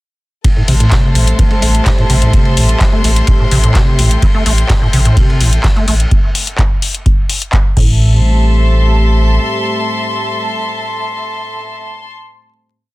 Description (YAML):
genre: acid house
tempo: 127 BPM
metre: 4/4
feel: straight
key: A minor pentatonic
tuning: A4 = 440 Hz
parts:
  - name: dark analog pad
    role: sustained chords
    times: 0.4-11.7 s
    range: A3 to C5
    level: -22 LUFS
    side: left 1 dB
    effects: chorus, sidechain pumping
  - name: deep acid bass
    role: riff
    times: 0.4-8.2 s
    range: A2 to A3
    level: -15 LUFS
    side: equal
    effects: overdrive, wide subtle chorus, sidechain pumping
  - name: booming analog drum machine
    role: drums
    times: 0.4-7.9 s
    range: crash cymbal, handclaps, hi-hat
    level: -19 LUFS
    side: left 2 dB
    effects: small room ambience
  - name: electronic kick drum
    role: drums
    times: 0.4-7.9 s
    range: none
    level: -12 LUFS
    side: equal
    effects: small room ambience
  - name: loose indie drum kit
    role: drums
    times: 0.4-6.0 s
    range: ride cymbal, snare drum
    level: -25 LUFS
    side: right 1 dB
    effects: sidechain pumping on cymbals, high-pass filter on cymbals, small room ambience, high-pass filter on snare, high-pass filter on room
  - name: dark studio string section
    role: texture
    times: 0.4-12.1 s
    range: A4 to C6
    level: -20 LUFS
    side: left 1 dB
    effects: sidechain pumping
  - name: saturated sub bass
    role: bass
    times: 0.7-9.4 s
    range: A1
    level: -12 LUFS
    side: equal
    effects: sidechain pumping
room: little or no reverb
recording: dense, heavily limited modern master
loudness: -10 LUFS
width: side -19 dB against mid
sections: 0.4-8.0 groove; 8.0-11.8 final chord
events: none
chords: 0.4 Am7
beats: | 0.45 0.92 1.39 1.86 | 2.33 2.81 3.28 3.75 | 4.22 4.70 5.17 5.64 | 6.11 6.59 7.06 7.53 | 8.00 8.48 8.95 9.42 | 9.89 10.37 10.84 11.31